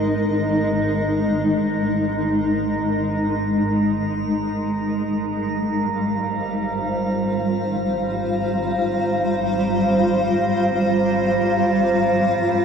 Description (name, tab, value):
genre	ambient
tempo	free time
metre	none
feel	none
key	unclear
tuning	A4 = 438 Hz
part	granular cloud pad	sustained chords	0.0-12.6 s	G3 to F5	-19 LUFS	equal	built-in reverb
part	rich studio double bass section	bass	0.0-12.6 s	Ab1	-32 LUFS	equal	none
part	drifting glass-harmonics texture	texture	0.0-12.6 s	Bb5	-30 LUFS	right 4 dB	chorus, built-in reverb
room	wet cathedral reverb, RT60 5.9 s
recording	none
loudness	-18 LUFS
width	side -6 dB against mid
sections	0.0-12.6 A section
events	fade-in on synth texture 0.0-12.6; fade-out on double bass section 0.0-12.6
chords	0.0 Absus2; 5.1 Fsus2/Ab